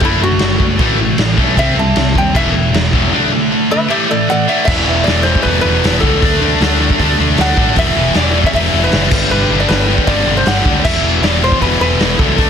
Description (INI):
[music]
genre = punk rock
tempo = 155 BPM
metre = 4/4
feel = straight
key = E minor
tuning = A4 = 441 Hz
[part]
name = metal-body resonator slide guitar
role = melody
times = 0.0-12.5 s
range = E4 to A5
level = -18 LUFS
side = equal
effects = ping-pong delay
[part]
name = cranked stack guitar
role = riff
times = 0.0-12.5 s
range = E2 to D4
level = -20 LUFS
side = right 15 dB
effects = overdrive
[part]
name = distorted electric guitar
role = riff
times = 0.0-12.5 s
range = E2 to D4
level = -18 LUFS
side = left 17 dB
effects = overdrive
[part]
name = scooped high-gain guitar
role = riff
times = 0.0-12.5 s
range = E2 to D4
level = -19 LUFS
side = equal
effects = distortion
[part]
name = overdriven picked electric bass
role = bass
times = 0.0-12.5 s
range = E1 to D#2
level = -18 LUFS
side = equal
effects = none
[part]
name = raw garage drum kit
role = drums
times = 0.0-12.5 s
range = crash cymbal, hi-hat, kick drum, snare drum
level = -16 LUFS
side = equal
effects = none
[sound]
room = little or no reverb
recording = dense, heavily limited modern master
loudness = -10 LUFS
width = side -7 dB against mid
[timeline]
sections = 0.0-4.7 A section; 4.7-12.5 B section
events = resonator guitar played with a steel bar solo 0.0-4.7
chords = 0.0 D/F#; 0.8 A5; 1.6 C5; 2.4 E5; 3.1 D5; 3.9 A5; 4.7 E5; 6.2 D; 7.8 E5; 9.1 G; 10.8 E5